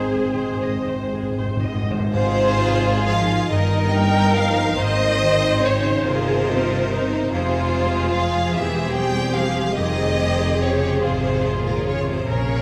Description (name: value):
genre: classical, slow romantic movement for symphony orchestra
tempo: 38-50 BPM (dotted quarters)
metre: 6/8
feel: rubato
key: Ab major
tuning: A4 = 440 Hz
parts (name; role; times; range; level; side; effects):
- warm studio violin section; melody; 0.0-12.6 s; Bb4 to G5; -27 LUFS; equal; none
- dark clarinet; second line; 0.0-0.6 s; none; barely audible; none; none
- warm studio violin section; second line; 0.0-12.6 s; C4 to C5; -28 LUFS; equal; none
- rich studio viola section; accompaniment; 0.0-12.6 s; Ab3 to Eb5; -29 LUFS; equal; none
- mellow French horn section; sustained chords; 0.0-1.7 s; Ab3 to C4; -29 LUFS; equal; none
- concert harp; arpeggios; 0.0-12.6 s; E2 to C5; -29 LUFS; equal; none
- warm studio cello section; bass; 0.0-12.6 s; Bb2 to Ab4; -29 LUFS; equal; none
- warm studio double bass section; bass; 0.0-12.6 s; E1 to Bb1; -28 LUFS; equal; none
- timpani; percussion; 0.0-3.5 s; Ab2; -29 LUFS; equal; none
room: wet scoring stage reverb, RT60 1.8 s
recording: none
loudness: -20 LUFS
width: mono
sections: 0.0-2.1 A section; 2.1-12.6 B section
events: timpani fill 0.0-2.1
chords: 0.0 Ab; 3.5 Eb/G; 4.8 Ab; 7.3 Fm; 8.6 C/E; 9.8 Fm